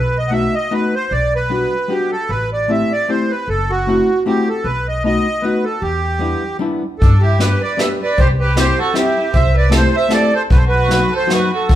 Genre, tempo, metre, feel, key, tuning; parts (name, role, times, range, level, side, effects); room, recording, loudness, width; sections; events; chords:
musette waltz; 153 BPM; 3/4; swing 54% on 8ths; A4 = 440 Hz
accordion; melody; 0.0-11.7 s; F#4 to F#5; -18 LUFS; right 2 dB; light tremolo tuning
upright bass; bass; 0.0-11.8 s; F#1 to G2; -18 LUFS; equal
hollow-body jazz guitar; accompaniment; 0.3-11.5 s; F#3 to G4; -19 LUFS; left 3 dB
warm violin; second line; 7.0-11.8 s; D4 to C5; -21 LUFS; right 3 dB
jazz brush drum kit; drums; 7.0-11.8 s; hi-hat, kick drum, snare drum; -16 LUFS; equal
moderate large studio reverb, RT60 1.1 s; band playing live in one room, faint mains hum; -14 LUFS; side -12 dB against mid
0.0-7.0 A section; 7.0-11.8 B section
0.0 B7; 1.1 Gmaj7/B; 2.3 Am7; 3.5 F#m7b5; 4.7 B7; 5.8 Em7; 7.0 G; 8.2 C; 9.3 Am7/C; 10.5 B